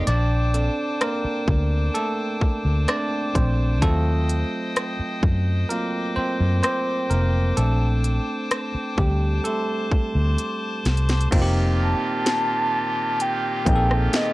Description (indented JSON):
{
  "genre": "contemporary R&B",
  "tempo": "64 BPM",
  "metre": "4/4",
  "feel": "straight",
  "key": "Bb major",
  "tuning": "A4 = 439 Hz",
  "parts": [
    { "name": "bell-like tine electric piano", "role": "accompaniment", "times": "0.0-14.3 s", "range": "Gb3 to D5", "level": "-26 LUFS", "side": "right 1 dB", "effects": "none" },
    { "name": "pipe organ, clarinet reed", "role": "sustained chords", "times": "0.0-14.3 s", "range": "Bb2 to Eb6", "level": "-30 LUFS", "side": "left 1 dB", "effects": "sidechain pumping" },
    { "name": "vintage muted fingered electric bass", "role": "bass", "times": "0.1-14.1 s", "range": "F1 to Gb2", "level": "-20 LUFS", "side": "equal", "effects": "none" },
    { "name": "trap drum kit", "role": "drums", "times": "0.1-14.3 s", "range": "crash cymbal, hi-hat, kick drum, rim click, snare drum", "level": "-23 LUFS", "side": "equal", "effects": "none" },
    { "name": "mellow horn-like synth lead", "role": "melody", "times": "11.8-14.3 s", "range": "Eb5 to A5", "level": "-23 LUFS", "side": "equal", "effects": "chorus, tape echo" }
  ],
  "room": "little or no reverb",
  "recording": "dry, gritty hardware recording",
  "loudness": "-20 LUFS",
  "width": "side -19 dB against mid",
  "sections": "0.0-11.3 A section; 11.3-14.3 B section",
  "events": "tine electric piano solo 0.0-11.3; drum fill 10.4-11.3",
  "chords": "0.1 Bbmaj9; 3.8 Ebm6; 7.6 Bbmaj9; 11.3 F9sus4"
}